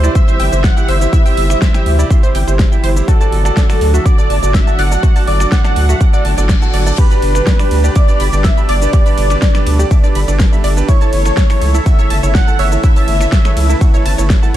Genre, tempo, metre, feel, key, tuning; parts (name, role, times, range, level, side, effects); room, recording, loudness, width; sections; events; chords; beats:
progressive house; 123 BPM; 4/4; straight; G major; A4 = 440 Hz
wide unison lead; melody; 0.0-14.3 s; A4 to F#5; -20 LUFS; equal; wide subtle chorus, digital delay
soft synth bell; second line; 0.0-14.3 s; A5 to F#6; -28 LUFS; right 1 dB
supersaw pad; sustained chords; 0.0-14.6 s; A2 to B4; -24 LUFS; equal; sidechain pumping
wide unison pluck; arpeggios; 0.0-14.6 s; E4 to D6; -24 LUFS; right 1 dB; sidechain pumping, digital delay
bright concert grand piano; stabs; 0.0-14.6 s; D4 to F#5; -22 LUFS; right 6 dB; sidechain pumping, digital delay
round analog bass; bass; 0.0-14.6 s; G1 to D2; -13 LUFS; equal; sidechain pumping
big-room dance drum kit; drums; 0.0-14.6 s; crash cymbal, finger snaps, hi-hat, ride cymbal, shaker, snare drum; -22 LUFS; left 1 dB; overdrive, sidechain pumping on hats, studio reverb, sidechain pumping on perc, sidechain pumping on cymbals
electronic kick drum; drums; 0.2-14.4 s; -11 LUFS; equal; overdrive, studio reverb
reverse cymbal; sound effects; 6.2-7.0 s; -26 LUFS; left 6 dB
little or no reverb; dark, warm production; -10 LUFS; side -12 dB against mid
0.0-14.6 A section
reverse cymbal 6.2-7.0
0.0 C/G; 3.1 D/G; 7.0 G; 10.9 A/G
0.15 0.64 | 1.13 1.62 2.10 2.59 | 3.08 3.57 4.06 4.54 | 5.03 5.52 6.01 6.50 | 6.98 7.47 7.96 8.45 | 8.93 9.42 9.91 10.40 | 10.88 11.37 11.86 12.35 | 12.84 13.32 13.81 14.30